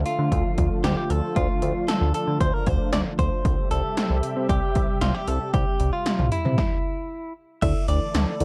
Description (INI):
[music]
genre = synth-pop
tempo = 115 BPM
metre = 4/4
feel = straight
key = D minor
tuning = A4 = 440 Hz
[part]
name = warm analog pad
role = sustained chords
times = 0.0-8.4 s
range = C3 to E5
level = -33 LUFS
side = equal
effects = chorus
[part]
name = chorused synth bass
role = bass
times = 0.0-8.4 s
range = C2 to D3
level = -26 LUFS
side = equal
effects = none
[part]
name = direct-recorded clean electric guitar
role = melody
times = 0.1-8.4 s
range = E4 to E5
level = -31 LUFS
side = equal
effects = none
[part]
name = 80s electronic pad drums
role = drums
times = 0.1-8.4 s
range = crash cymbal, hi-hat, kick drum, snare drum, toms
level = -27 LUFS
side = equal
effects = gated reverb on snare and toms, overdrive
[part]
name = FM electric piano with soft pad layer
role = accompaniment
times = 7.6-8.4 s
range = E4 to D5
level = -33 LUFS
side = equal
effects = chorus
[sound]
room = little or no reverb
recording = dark, warm production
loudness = -24 LUFS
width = mono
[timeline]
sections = 0.0-7.6 A section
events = stop 6.6-7.6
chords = 0.0 Dmadd9; 3.5 C; 7.6 Dsus2